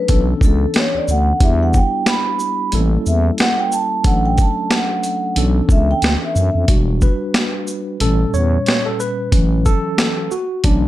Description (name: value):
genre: hip hop, jazz-hop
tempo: 91 BPM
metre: 4/4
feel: swing 58% on 16ths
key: E dorian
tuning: A4 = 440 Hz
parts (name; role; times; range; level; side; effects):
- vibraphone with soft mallets; melody; 0.0-6.7 s; A4 to B5; -20 LUFS; right 1 dB; none
- tine electric piano; accompaniment; 0.0-10.9 s; Bb2 to C#5; -21 LUFS; equal; fast stereo tremolo
- growling FM bass; bass; 0.1-10.9 s; E1 to F#2; -17 LUFS; equal; none
- boom bap sampler-style drum kit; drums; 0.1-10.8 s; hi-hat, kick drum, shaker, snare drum; -16 LUFS; equal; none
room: little or no reverb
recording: dark, warm production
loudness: -14 LUFS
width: side -14 dB against mid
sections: 0.0-6.7 A section; 6.7-10.9 A section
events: vibraphone solo 0.0-6.7; tine electric piano solo 6.7-10.9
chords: 0.1 Bm11; 1.4 Em7; 2.7 A7b9; 4.0 Dmaj7/A; 5.4 Bm11; 6.7 Em9; 8.0 A7b9; 9.3 A69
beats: 0.09 0.75 | 1.41 2.07 2.73 3.39 | 4.05 4.71 5.36 6.02 | 6.68 7.34 8.00 8.66 | 9.32 9.98 10.64